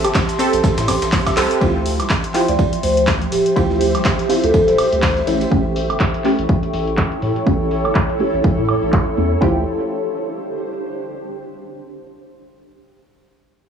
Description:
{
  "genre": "deep house",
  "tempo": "123 BPM",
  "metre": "4/4",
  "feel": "swing 57% on 16ths",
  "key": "D minor",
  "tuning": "A4 = 440 Hz",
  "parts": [
    { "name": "warbly tape-like pad", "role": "sustained chords", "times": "0.0-9.6 s", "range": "F3 to D6", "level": "-26 LUFS", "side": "right 2 dB", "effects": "chorus, built-in reverb, sidechain pumping" },
    { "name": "soft round pluck", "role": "arpeggios", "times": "0.0-1.5 s", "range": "C4 to E5", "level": "-26 LUFS", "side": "left 1 dB", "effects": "chorus, sidechain pumping, tape echo" },
    { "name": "filtered dub chord stab", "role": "stabs", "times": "0.0-9.6 s", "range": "A3 to A4", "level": "-21 LUFS", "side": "right 1 dB", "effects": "chorus, sidechain pumping, tape echo" },
    { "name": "round analog bass", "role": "bass", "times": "0.0-9.6 s", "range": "D1 to A2", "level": "-22 LUFS", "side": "equal", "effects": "sidechain pumping" },
    { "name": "breakbeat sampler-style drum kit", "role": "drums", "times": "0.0-5.5 s", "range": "hi-hat, ride cymbal, snare drum", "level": "-32 LUFS", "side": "right 2 dB", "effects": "sidechain pumping on cymbals, high-pass filter on cymbals, sidechain pumping on hats, high-pass filter on hats, high-pass filter on snare" },
    { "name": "punchy analog drum machine", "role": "drums", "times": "0.0-9.4 s", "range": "cabasa, handclaps, hi-hat, woodblock", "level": "-23 LUFS", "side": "right 1 dB", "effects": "low-pass filter on perc, low-pass filter on hats, low-pass filter on snare, low-pass filter on room" },
    { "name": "electronic kick drum", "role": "drums", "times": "0.1-9.5 s", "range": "none", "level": "-18 LUFS", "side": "equal", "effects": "none" },
    { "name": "granular cloud pad", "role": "texture", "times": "3.3-11.3 s", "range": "D4 to E5", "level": "-23 LUFS", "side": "equal", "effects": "built-in reverb, sidechain pumping" },
    { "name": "vibraphone with soft mallets", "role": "melody", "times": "2.5-5.2 s", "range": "G4 to D5", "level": "-18 LUFS", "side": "left 1 dB", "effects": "tape echo" }
  ],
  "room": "light reverb, digital ambience",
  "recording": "studio ambience",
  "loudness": "-15 LUFS",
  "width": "side -7 dB against mid",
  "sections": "0.0-1.6 A section; 1.6-9.4 B section; 9.4-11.4 C section",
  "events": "drop 0.0-1.6; drum fill 1.4; band accent 1.4; filter sweep on drum 1.6-9.4; filter sweep on synth stab 1.6-9.4",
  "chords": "0.0 Am7; 1.6 Dm11; 5.3 A7; 9.4 Dm11"
}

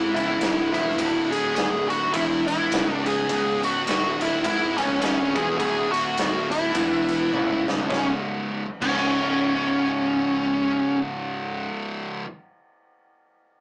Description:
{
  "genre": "stoner and doom metal",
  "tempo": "104 BPM",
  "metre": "4/4",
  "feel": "swing 58% on 8ths",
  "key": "C# phrygian",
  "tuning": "A4 = 440 Hz",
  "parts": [
    { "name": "fuzz lead guitar", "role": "melody", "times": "0.0-11.0 s", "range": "C#4 to G#4", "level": "-22 LUFS", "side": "equal", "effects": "wah, distortion" },
    { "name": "fuzz guitar", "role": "riff", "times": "0.0-12.2 s", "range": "C#2 to C#3", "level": "-30 LUFS", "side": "equal", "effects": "distortion" },
    { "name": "thick fuzz guitar", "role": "riff", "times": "0.0-12.2 s", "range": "C#2 to C#3", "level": "-32 LUFS", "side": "equal", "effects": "distortion" },
    { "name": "modern bright picked electric bass", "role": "bass", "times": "0.0-11.7 s", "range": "C#1 to G#1", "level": "-31 LUFS", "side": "equal", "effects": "overdrive" },
    { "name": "big rock drum kit", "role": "drums", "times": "0.2-9.0 s", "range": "crash cymbal, kick drum, ride cymbal, snare drum, toms", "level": "-28 LUFS", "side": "equal", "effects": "none" }
  ],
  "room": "light reverb",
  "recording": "rough rehearsal-room recording, tube saturation, small speaker sound",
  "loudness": "-20 LUFS",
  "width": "side -34 dB against mid",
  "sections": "0.0-7.9 A section; 7.9-10.2 B section",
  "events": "drum fill 7.3-7.9",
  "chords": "0.0 C#m; 7.9 C#5"
}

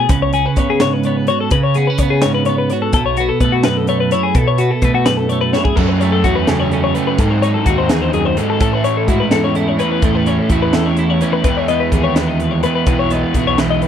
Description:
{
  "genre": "math rock and midwest emo",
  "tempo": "84 BPM (dotted quarters)",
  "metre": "6/8",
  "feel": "straight",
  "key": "unclear",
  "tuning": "A4 = 440 Hz",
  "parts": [
    { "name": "twelve-string electric guitar", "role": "accompaniment", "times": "0.0-13.9 s", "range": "E2 to F#4", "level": "-18 LUFS", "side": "right 6 dB", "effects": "none" },
    { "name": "twelve-string electric guitar", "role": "arpeggios", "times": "0.0-13.9 s", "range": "F#4 to D#5", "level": "-18 LUFS", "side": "left 8 dB", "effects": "none" },
    { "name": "growling fingered electric bass", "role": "bass", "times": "0.1-13.9 s", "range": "B1 to C#3", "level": "-20 LUFS", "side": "equal", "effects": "overdrive" },
    { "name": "crisp fusion drum kit", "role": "drums", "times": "0.1-13.9 s", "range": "crash cymbal, hi-hat, kick drum, snare drum", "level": "-19 LUFS", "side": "equal", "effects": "none" },
    { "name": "crunchy overdriven guitar", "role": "riff", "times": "5.8-13.9 s", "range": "F#2 to F#4", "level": "-20 LUFS", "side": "left 1 dB", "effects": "none" }
  ],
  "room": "little or no reverb",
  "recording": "none",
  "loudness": "-13 LUFS",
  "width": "side -9 dB against mid",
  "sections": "0.0-5.8 A section; 5.8-13.9 B section",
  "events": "drum fill 5.5",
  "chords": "0.1 C#5; 2.9 B7sus4; 5.8 F#m7; 7.2 G#7b9; 8.6 Amaj9; 11.5 C#m9"
}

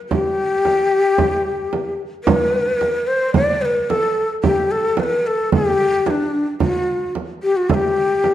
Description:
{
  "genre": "Arabic maqam ensemble",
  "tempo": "110 BPM",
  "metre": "4/4",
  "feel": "straight",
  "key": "G maqam rast",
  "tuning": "A4 = 440 Hz",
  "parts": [
    { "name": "breathy ney", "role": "melody", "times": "0.1-8.3 s", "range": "D4 to D5", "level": "-17 LUFS", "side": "left 2 dB", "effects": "none" },
    { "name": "frame drum", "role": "percussion", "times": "0.1-8.3 s", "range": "none", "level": "-21 LUFS", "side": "right 4 dB", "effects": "none" }
  ],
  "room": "wet recital hall reverb, RT60 1.4 s",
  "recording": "dark, warm production",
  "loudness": "-16 LUFS",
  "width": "side -12 dB against mid",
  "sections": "0.0-8.3 A section",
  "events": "none",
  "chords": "none"
}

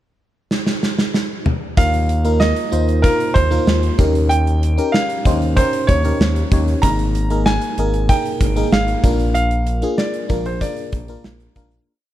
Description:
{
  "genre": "1980s-style pop",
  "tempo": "95 BPM",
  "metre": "4/4",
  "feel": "straight",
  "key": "Eb major",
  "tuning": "A4 = 440 Hz",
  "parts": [
    { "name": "gated 80s drum kit", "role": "drums", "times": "0.5-11.9 s", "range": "hi-hat, kick drum, snare drum, toms", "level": "-19 LUFS", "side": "equal", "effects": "none" },
    { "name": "bright concert grand piano", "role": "melody", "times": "1.8-11.5 s", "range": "Bb4 to Bb5", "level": "-22 LUFS", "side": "right 2 dB", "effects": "none" },
    { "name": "FM electric piano", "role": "accompaniment", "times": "1.8-11.9 s", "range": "Bb3 to Db5", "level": "-22 LUFS", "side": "left 1 dB", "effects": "chorus, phaser" },
    { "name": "smooth gliding synth bass", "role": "bass", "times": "1.8-11.8 s", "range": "Ab1 to Eb2", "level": "-18 LUFS", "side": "equal", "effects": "none" }
  ],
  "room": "little or no reverb",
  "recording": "none",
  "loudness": "-15 LUFS",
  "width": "side -13 dB against mid",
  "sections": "0.0-1.8 pickup bar; 1.8-11.9 verse",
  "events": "drum fill 0.5-1.8; fade-out 9.4-11.9",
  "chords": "0.0 N.C.; 1.8 Ebsus2; 4.0 Eb7; 6.8 Absus2; 9.0 Bb"
}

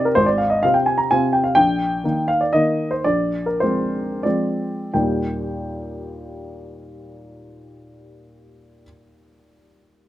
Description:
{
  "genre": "classical, piano waltz",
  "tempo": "81-139 BPM",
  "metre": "3/4",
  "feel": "rubato",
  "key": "Eb major",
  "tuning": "A4 = 440 Hz",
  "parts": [
    { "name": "warm baby grand piano", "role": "solo", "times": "0.0-10.1 s", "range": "Ab1 to Bb5", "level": "-18 LUFS", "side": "equal", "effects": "none" }
  ],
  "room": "little or no reverb",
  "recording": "close, detailed microphones",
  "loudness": "-17 LUFS",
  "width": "side -14 dB against mid",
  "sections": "0.0-4.9 A section; 4.9-8.9 B section",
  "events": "slowing down 0.9-4.9",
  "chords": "0.2 Fm/Ab; 1.6 Eb/Bb; 3.1 Bb9; 4.9 Eb"
}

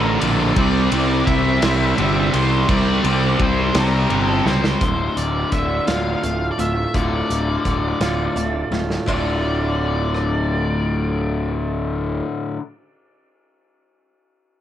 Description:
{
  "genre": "quiet-loud alternative rock",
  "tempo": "56 BPM (dotted quarters)",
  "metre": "6/8",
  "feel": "straight",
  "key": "D minor",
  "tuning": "A4 = 440 Hz",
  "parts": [
    { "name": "octave-fuzz lead guitar", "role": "melody", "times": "0.0-12.2 s", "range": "Bb4 to F5", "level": "-25 LUFS", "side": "left 1 dB", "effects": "distortion, plate reverb" },
    { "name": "clear studio string section", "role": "sustained chords", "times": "0.0-4.8 s", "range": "E3 to D5", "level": "-34 LUFS", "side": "right 1 dB", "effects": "none" },
    { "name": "heavy high-gain guitar", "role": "riff", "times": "0.0-4.8 s", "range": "D2 to C4", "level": "-24 LUFS", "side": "right 1 dB", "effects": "distortion, cassette tape" },
    { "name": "overdriven electric guitar", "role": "riff", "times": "0.0-12.6 s", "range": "D2 to C4", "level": "-24 LUFS", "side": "left 7 dB", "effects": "cassette tape" },
    { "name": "thick fuzz guitar", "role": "riff", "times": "0.0-4.8 s", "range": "D2 to C4", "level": "-23 LUFS", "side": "right 10 dB", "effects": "distortion, cassette tape" },
    { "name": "fuzz picked electric bass", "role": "bass", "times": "0.0-12.2 s", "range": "D1 to C#2", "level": "-22 LUFS", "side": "equal", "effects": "overdrive" },
    { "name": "loose indie drum kit", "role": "drums", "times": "0.2-10.3 s", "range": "hi-hat, kick drum, ride cymbal, rim click, snare drum", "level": "-25 LUFS", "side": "equal", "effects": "none" },
    { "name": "picked swing-style acoustic guitar", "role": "arpeggios", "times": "4.8-12.6 s", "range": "D2 to F4", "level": "-27 LUFS", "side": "right 5 dB", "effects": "cassette tape, plate reverb" }
  ],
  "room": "light reverb",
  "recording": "home recording on cassette",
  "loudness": "-17 LUFS",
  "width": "side -11 dB against mid",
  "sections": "0.0-4.8 A section; 4.8-9.1 B section; 9.1-13.4 C section",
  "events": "drum fill 4.5-4.8, 8.7-9.1",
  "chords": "0.0 Dm; 0.6 Cadd9; 4.8 Dm"
}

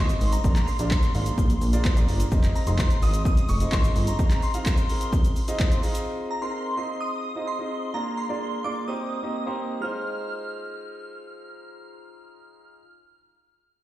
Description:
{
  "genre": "dance-pop",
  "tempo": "128 BPM",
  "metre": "4/4",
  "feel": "straight",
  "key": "F minor",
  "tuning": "A4 = 440 Hz",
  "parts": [
    { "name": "shimmering bell with halo", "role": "melody", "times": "0.0-12.8 s", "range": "Bb5 to F6", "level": "-33 LUFS", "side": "equal", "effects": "ensemble chorus, ping-pong delay" },
    { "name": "clear grand piano", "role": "accompaniment", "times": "0.0-12.8 s", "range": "Ab3 to F5", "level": "-31 LUFS", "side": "right 1 dB", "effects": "sidechain pumping" },
    { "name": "chorused synth bass", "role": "bass", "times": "0.0-4.1 s", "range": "F1 to Bb1", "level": "-23 LUFS", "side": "equal", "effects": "sidechain pumping" },
    { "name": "punchy analog drum machine", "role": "drums", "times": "0.1-6.1 s", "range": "handclaps, hi-hat, kick drum, shaker", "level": "-22 LUFS", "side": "equal", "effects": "none" }
  ],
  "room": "little or no reverb",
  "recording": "played on a big sound system in a bare room, stone room reverb",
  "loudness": "-22 LUFS",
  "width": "side -15 dB against mid",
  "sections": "0.0-9.8 A section; 9.8-13.6 B section",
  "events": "none",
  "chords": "0.4 Bb7; 2.3 Fm7; 5.8 Ab6; 7.9 Bb7; 8.9 Cm7; 9.8 Fm7"
}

